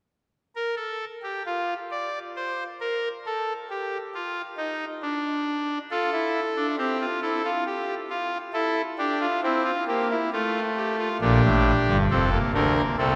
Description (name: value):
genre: classical, baroque-style 4-part fugue for pipe organ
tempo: 68 BPM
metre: 3/4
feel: straight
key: Bb major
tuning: A4 = 440 Hz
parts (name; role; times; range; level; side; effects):
- pipe organ, trumpet; solo; 0.6-13.2 s; F1 to D5; -26 LUFS; equal; none
room: wet cathedral reverb, RT60 4.6 s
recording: none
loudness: -26 LUFS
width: mono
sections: 0.6-13.2 A section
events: none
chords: 0.6 N.C.; 5.9 F; 7.7 Fsus2; 8.6 C7; 10.3 F/A; 11.2 Bb